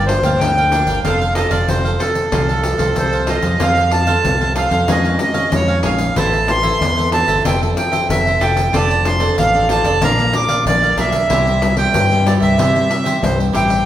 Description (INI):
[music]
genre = samba and choro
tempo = 94 BPM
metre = 4/4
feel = straight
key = F major from 3.6 s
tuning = A4 = 441 Hz
[part]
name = accordion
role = melody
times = 0.0-13.9 s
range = A4 to D6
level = -17 LUFS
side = right 1 dB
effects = none
[part]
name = cavaquinho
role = accompaniment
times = 0.0-13.9 s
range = D4 to G5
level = -22 LUFS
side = right 3 dB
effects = none
[part]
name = nylon-string guitar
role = accompaniment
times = 0.0-13.8 s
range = F2 to A4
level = -22 LUFS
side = left 2 dB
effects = none
[part]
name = growling fingered electric bass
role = bass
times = 0.0-13.8 s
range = F1 to C3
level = -20 LUFS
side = equal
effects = overdrive
[part]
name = pandeiro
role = percussion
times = 0.1-13.9 s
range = none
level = -22 LUFS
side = left 2 dB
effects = none
[sound]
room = wet recital hall reverb, RT60 1.6 s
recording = recorded in a church or concert hall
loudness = -13 LUFS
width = side -12 dB against mid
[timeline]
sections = 0.0-3.6 A section; 3.6-13.9 B section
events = none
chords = 0.0 Gm7; 1.0 F; 4.9 Dbadd9/F; 6.2 Am; 7.5 Fmaj7; 8.7 Dm7/F; 10.0 Bb; 11.3 C